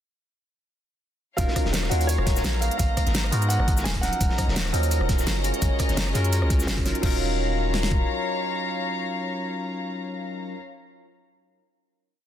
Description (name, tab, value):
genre	liquid drum and bass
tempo	170 BPM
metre	4/4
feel	swing 53% on 16ths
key	Eb minor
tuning	A4 = 438 Hz
part	warm grand piano	melody	1.4-5.0 s	Db5 to Ab5	-32 LUFS	right 2 dB	tape echo
part	barky tine electric piano	accompaniment	1.4-10.6 s	F3 to Bb4	-29 LUFS	equal	phaser, digital delay
part	warm studio string section	sustained chords	1.4-10.6 s	Cb4 to Bb5	-32 LUFS	left 4 dB	sidechain pumping
part	long sustained 808-style bass	bass	1.4-8.1 s	Eb1 to Ab2	-25 LUFS	equal	none
part	crunchy breakbeat drum kit	drums	1.4-6.9 s	hi-hat, snare drum	-35 LUFS	equal	high-pass filter on hats, studio reverb, high-pass filter on snare, high-pass filter on room
part	pop drum kit	drums	1.4-8.0 s	kick drum, snare drum	-24 LUFS	equal	studio reverb
part	pop drum kit	drums	1.4-7.1 s	cabasa, crash cymbal, hi-hat, rim click, snare drum	-30 LUFS	equal	studio reverb
room	small room ambience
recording	dense, heavily limited modern master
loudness	-22 LUFS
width	side -10 dB against mid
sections	1.4-7.0 drop; 7.0-9.9 final chord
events	drop 1.4-7.0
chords	1.4 Ebm9; 5.4 Gbmaj9; 7.0 Ebm9